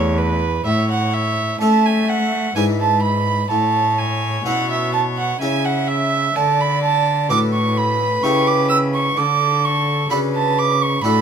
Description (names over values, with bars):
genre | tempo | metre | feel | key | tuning
classical, baroque-style sonata movement with continuo | 64 BPM | 3/4 | straight | A major | A4 = 438 Hz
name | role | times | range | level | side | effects
warm violin | second line | 0.0-11.2 s | B4 to E6 | -19 LUFS | right 6 dB | none
harpsichord | accompaniment | 0.0-11.2 s | E2 to C#5 | -23 LUFS | left 3 dB | none
rich cello | bass | 0.0-11.2 s | E2 to A3 | -22 LUFS | right 1 dB | none
warm violin | melody | 0.7-11.2 s | A4 to E5 | -25 LUFS | left 6 dB | none
room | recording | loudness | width
light reverb | minimal, uncompressed stereo recording | -16 LUFS | side -7 dB against mid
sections
0.7-11.2 A section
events
none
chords
0.0 F#m (rootless); 0.7 A; 2.6 E7/G#; 3.5 A; 6.4 D; 8.2 A7/C#; 9.2 D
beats
| 0.66 1.62 2.57 | 3.51 4.46 5.42 | 6.37 7.31 8.24 | 9.18 10.12 11.05